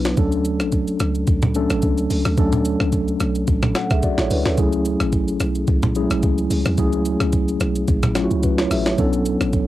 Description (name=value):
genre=amapiano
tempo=109 BPM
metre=4/4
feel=swing 55% on 16ths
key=F# minor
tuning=A4 = 440 Hz
part: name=mellow tine electric piano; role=accompaniment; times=0.0-9.7 s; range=F#3 to F#5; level=-20 LUFS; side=equal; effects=medium stereo tremolo
part: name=deep log drum bass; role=bass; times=0.0-9.7 s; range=A1 to E2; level=-23 LUFS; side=equal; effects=none
part: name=jungle sampler-style drum kit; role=drums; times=0.1-9.7 s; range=hi-hat, kick drum, rim click, shaker, snare drum, toms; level=-21 LUFS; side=equal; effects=none
room=moderate booth ambience, RT60 0.2 s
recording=home recording on cassette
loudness=-17 LUFS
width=side -14 dB against mid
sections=0.0-9.7 A section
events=none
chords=0.2 Dmaj7; 4.6 F#m9; 9.0 Bm9